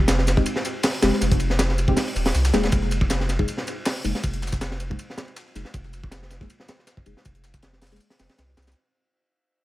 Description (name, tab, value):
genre	drum and bass, jungle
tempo	159 BPM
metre	4/4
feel	swing 54% on 16ths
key	unclear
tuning	A4 = 440 Hz
part	deep mellow chord stab	stabs	0.0-8.0 s	Ab3 to Ab4	-27 LUFS	left 1 dB	chorus, cassette tape, dub echo
part	saturated sub bass	bass	0.0-8.7 s	Eb1 to C2	-25 LUFS	equal	none
part	breakbeat sampler-style drum kit	drums	0.1-8.8 s	hi-hat, snare drum, tambourine	-34 LUFS	left 1 dB	overdrive, high-pass filter on snare, high-pass filter on perc, high-pass filter on hats, high-pass filter on room
part	crunchy breakbeat drum kit	drums	0.1-8.8 s	hi-hat, kick drum, ride cymbal, snare drum	-24 LUFS	equal	none
room	small room ambience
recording	none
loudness	-20 LUFS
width	side -16 dB against mid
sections	0.0-8.8 A section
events	fade-out 0.0-8.8; filter sweep on synth stab 0.0-8.8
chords	0.0 Fm9; 2.7 Ebsus4/F